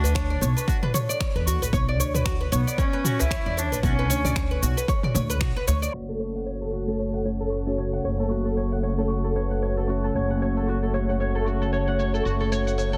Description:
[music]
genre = organic downtempo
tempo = 114 BPM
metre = 4/4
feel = swing 57% on 16ths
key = F# minor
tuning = A4 = 440 Hz
[part]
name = warm cello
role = melody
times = 0.0-4.6 s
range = B3 to E4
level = -33 LUFS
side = equal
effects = delay
[part]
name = oud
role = arpeggios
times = 0.0-13.0 s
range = F#4 to F#5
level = -31 LUFS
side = equal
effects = low-pass filter, delay
[part]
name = upright bass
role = bass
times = 0.0-13.0 s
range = F#1 to E2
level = -28 LUFS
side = equal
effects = sidechain pumping
[part]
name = udu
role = percussion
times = 0.0-5.8 s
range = none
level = -31 LUFS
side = equal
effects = none
[part]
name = deep house drum kit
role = drums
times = 0.1-12.9 s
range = cabasa, finger snaps, toms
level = -31 LUFS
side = equal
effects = overdrive, soft clipping on snare
[part]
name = electronic kick drum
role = drums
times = 0.2-5.5 s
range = none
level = -28 LUFS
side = equal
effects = overdrive
[part]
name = warm analog pad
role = sustained chords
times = 5.9-13.0 s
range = C#3 to F#4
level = -34 LUFS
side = equal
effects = chorus, sidechain pumping
[part]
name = muted felt-like synth keys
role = accompaniment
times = 6.9-13.0 s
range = A3 to C#5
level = -33 LUFS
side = equal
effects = chorus, sidechain pumping, delay
[sound]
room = light reverb, studio ambience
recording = dense, heavily limited modern master, low-pass filter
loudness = -25 LUFS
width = mono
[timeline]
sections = 0.0-5.9 A section; 5.9-13.0 B section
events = filter sweep on oud 5.9-13.0; filter sweep 5.9-13.0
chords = 0.0 Bmadd9; 5.9 F#m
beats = 0.15 0.68 1.20 | 1.73 2.26 2.78 3.31 | 3.84 4.36 4.89 5.42 | 5.94 6.47 6.99 7.52 | 8.05 8.57 9.10 9.62 | 10.15 10.68 11.20 11.73 | 12.26 12.78

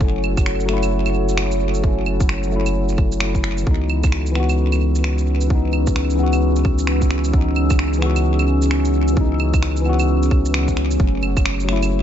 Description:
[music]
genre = future garage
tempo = 131 BPM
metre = 4/4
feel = swing 61% on 16ths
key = F# dorian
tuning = A4 = 441 Hz
[part]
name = tine electric piano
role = accompaniment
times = 0.0-12.0 s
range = E3 to F#4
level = -23 LUFS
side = left 4 dB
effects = vintage 12-bit sampler grit, sidechain pumping, dub echo
[part]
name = deep dark ambient pad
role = sustained chords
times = 0.0-12.0 s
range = C#4 to E6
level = -24 LUFS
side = equal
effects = chorus, built-in reverb, sidechain pumping
[part]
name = soft dub sub bass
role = bass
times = 0.0-12.0 s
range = F#1 to C#2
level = -20 LUFS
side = equal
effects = tube saturation, sidechain pumping
[part]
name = electronic kick drum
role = drums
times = 0.0-11.4 s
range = none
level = -19 LUFS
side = equal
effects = studio reverb
[part]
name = electronic claves, shaker and finger snaps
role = drums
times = 0.2-11.9 s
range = none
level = -27 LUFS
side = right 3 dB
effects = studio reverb, tape echo
[sound]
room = light reverb, digital ambience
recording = echo-heavy mix, nothing above 7.7 kHz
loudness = -16 LUFS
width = side -10 dB against mid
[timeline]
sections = 0.0-12.0 A section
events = none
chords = 0.0 F#m; 3.7 C#m7; 11.0 F#m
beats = | 0.01 0.47 0.92 1.38 | 1.84 2.30 2.76 3.21 | 3.67 4.13 4.59 5.05 | 5.50 5.96 6.42 6.88 | 7.34 7.79 8.25 8.71 | 9.17 9.63 10.08 10.54 | 11.00 11.46 11.92

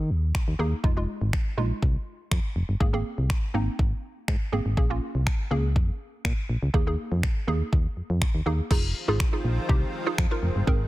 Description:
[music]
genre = dance-pop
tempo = 122 BPM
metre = 4/4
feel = straight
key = F minor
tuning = A4 = 440 Hz
[part]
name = hollow square pluck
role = accompaniment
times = 0.0-10.9 s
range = Ab3 to Bb4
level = -30 LUFS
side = right 2 dB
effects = chorus, sidechain pumping
[part]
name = solid FM bass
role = bass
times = 0.0-10.9 s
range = F1 to Eb3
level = -26 LUFS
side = equal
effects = sidechain pumping
[part]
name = deep house drum kit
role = drums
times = 0.3-10.8 s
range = crash cymbal, finger snaps, kick drum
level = -25 LUFS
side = equal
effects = soft clipping on snare
[part]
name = lush unison pad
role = sustained chords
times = 8.7-10.9 s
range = C3 to F4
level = -34 LUFS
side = equal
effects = chorus, sidechain pumping
[sound]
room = digital ambience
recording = dense, heavily limited modern master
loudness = -23 LUFS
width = side -17 dB against mid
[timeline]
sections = 0.0-8.7 A section; 8.7-10.9 B section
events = none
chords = 0.0 Ebsus4; 0.8 Fm7; 2.8 Abadd9; 4.8 Bbm7; 6.7 Ebsus4; 8.7 Fm7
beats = 0.35 | 0.84 1.33 1.82 2.31 | 2.81 3.30 3.79 4.28 | 4.77 5.26 5.76 6.25 | 6.74 7.23 7.72 8.22 | 8.71 9.20 9.69 10.18 | 10.68

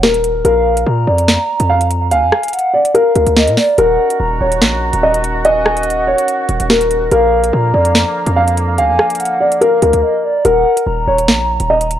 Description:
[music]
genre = hip hop, drill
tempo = 144 BPM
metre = 4/4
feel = half-time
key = Eb minor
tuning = A4 = 440 Hz
[part]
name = dark concert grand piano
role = melody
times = 0.0-11.9 s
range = Bb4 to F5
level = -14 LUFS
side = left 1 dB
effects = low-pass filter, tape echo
[part]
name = hard-hitting 808-style bass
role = bass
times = 0.0-12.0 s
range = Eb1 to Bb2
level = -17 LUFS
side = equal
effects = none
[part]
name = drill drum kit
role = drums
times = 0.0-12.0 s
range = hi-hat, rim click, snare drum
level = -15 LUFS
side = equal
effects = none
[part]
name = hollow clarinet-like synth lead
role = second line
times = 0.4-12.0 s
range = D5 to Bb5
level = -18 LUFS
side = right 2 dB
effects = chorus, tape echo
[part]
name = warm woodwind section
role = sustained chords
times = 3.8-10.4 s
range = D3 to Gb4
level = -23 LUFS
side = right 1 dB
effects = none
[sound]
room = little or no reverb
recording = dry, gritty hardware recording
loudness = -11 LUFS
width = side -10 dB against mid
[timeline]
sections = 0.0-10.4 A section; 10.4-12.0 A section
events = break 10.0-10.4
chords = 0.4 Bb; 3.8 Ebm7; 7.1 Bb; 10.4 Ebm7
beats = 0.03 | 0.45 0.86 1.28 1.70 | 2.12 2.53 2.95 3.37 | 3.78 4.20 4.62 5.03 | 5.45 5.87 6.28 6.70 | 7.12 7.53 7.95 8.37 | 8.78 9.20 9.62 10.03 | 10.45 10.87 11.28 11.70

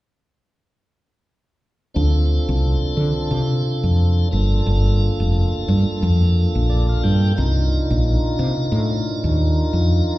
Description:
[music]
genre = jazz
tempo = 89 BPM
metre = 4/4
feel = swing 55% on 16ths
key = unclear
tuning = A4 = 440 Hz
[part]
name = tonewheel organ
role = accompaniment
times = 1.9-10.2 s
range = Bb3 to G5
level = -24 LUFS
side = right 1 dB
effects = slow rotary speaker, slapback echo
[part]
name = woody fretless electric bass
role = bass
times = 2.0-10.0 s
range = F1 to D3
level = -17 LUFS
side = equal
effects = analog chorus
[sound]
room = digital ambience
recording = live gig heard through the venue's PA, recital hall reverb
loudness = -16 LUFS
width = side -17 dB against mid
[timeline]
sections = 2.0-10.2 A section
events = tonewheel organ fill 6.4-7.4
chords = 2.0 Dm7; 4.3 Gm9; 7.4 Cm11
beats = | 1.96 2.63 3.31 3.99 | 4.66 5.34 6.01 6.69 | 7.37 8.04 8.71 9.39 | 10.06

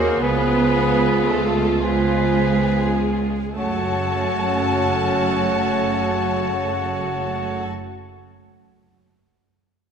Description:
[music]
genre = classical, slow romantic movement for symphony orchestra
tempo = 32-41 BPM (dotted quarters)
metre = 6/8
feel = rubato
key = F# minor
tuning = A4 = 439 Hz
[part]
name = rich symphonic violin section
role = melody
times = 0.0-7.6 s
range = E#4 to F#4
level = -30 LUFS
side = left 2 dB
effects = none
[part]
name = clear clarinet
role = second line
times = 0.0-7.6 s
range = C#4 to G#4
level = -30 LUFS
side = left 4 dB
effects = none
[part]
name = clear oboe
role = second line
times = 0.0-7.7 s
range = B4 to C#5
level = -29 LUFS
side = right 1 dB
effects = none
[part]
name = concert flute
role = second line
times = 0.0-7.7 s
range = F#5 to G#5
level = -29 LUFS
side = equal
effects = none
[part]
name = warm symphonic violin section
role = second line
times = 0.0-7.7 s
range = G#4 to A5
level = -28 LUFS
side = left 2 dB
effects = none
[part]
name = dark bassoon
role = accompaniment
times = 0.0-7.7 s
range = C#3 to F#3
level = -29 LUFS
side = right 4 dB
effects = none
[part]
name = warm symphonic viola section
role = accompaniment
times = 0.0-7.6 s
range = G#3 to B3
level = -24 LUFS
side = right 1 dB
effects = none
[part]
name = mellow French horn section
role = sustained chords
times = 0.0-7.6 s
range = B3 to F#4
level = -27 LUFS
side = left 2 dB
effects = none
[part]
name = dark symphonic double bass section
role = bass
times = 0.0-7.6 s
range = F#1 to D#2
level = -28 LUFS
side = right 6 dB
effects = none
[part]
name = rich symphonic cello section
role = bass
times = 0.0-7.6 s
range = C#2 to F#2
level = -28 LUFS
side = right 4 dB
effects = none
[sound]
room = moderate concert hall reverb, RT60 2.0 s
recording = none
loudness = -18 LUFS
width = side -7 dB against mid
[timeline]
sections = 0.0-3.6 A section; 3.6-6.9 B section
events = slowing down 0.0-3.6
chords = 0.2 C#7; 3.6 F#m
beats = | 0.24 1.82 | 3.57 5.21

